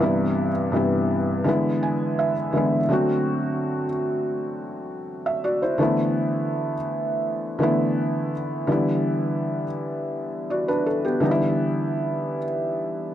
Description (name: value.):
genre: R&B.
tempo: 83 BPM.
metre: 4/4.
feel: straight.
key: unclear.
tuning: A4 = 440 Hz.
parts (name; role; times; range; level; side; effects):
felt-muted upright piano; solo; 0.0-13.1 s; G2 to G#5; -21 LUFS; equal; none.
room: light reverb, studio reverb.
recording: dark, warm production.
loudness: -21 LUFS.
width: side -11 dB against mid.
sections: 0.0-2.9 A section; 2.9-13.1 B section.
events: felt piano fill 1.5-2.9.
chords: 0.0 Cmaj7/G; 1.5 E7; 2.9 D7; 5.8 E7sus4; 8.7 Em7.